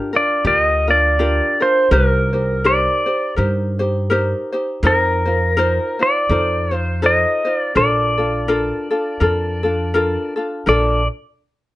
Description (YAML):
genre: Hawaiian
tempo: 82 BPM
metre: 4/4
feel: swing 58% on 8ths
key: Bb major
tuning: A4 = 440 Hz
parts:
  - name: ukulele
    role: accompaniment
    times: 0.0-11.0 s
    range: D4 to C5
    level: -20 LUFS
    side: left 1 dB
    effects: none
  - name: pedal steel guitar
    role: melody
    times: 0.2-11.1 s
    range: Bb4 to Eb5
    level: -17 LUFS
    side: equal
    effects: none
  - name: upright bass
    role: bass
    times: 0.4-11.1 s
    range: Bb1 to G2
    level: -20 LUFS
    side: equal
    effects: none
room: moderate small room reverb, RT60 0.6 s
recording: nothing above 10.6 kHz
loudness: -15 LUFS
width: side -16 dB against mid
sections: 0.0-10.7 A section; 10.7-11.8 B section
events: none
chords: 0.0 Gm7; 1.9 Cm7; 4.8 F7sus4; 6.3 F7; 7.7 Bbmaj7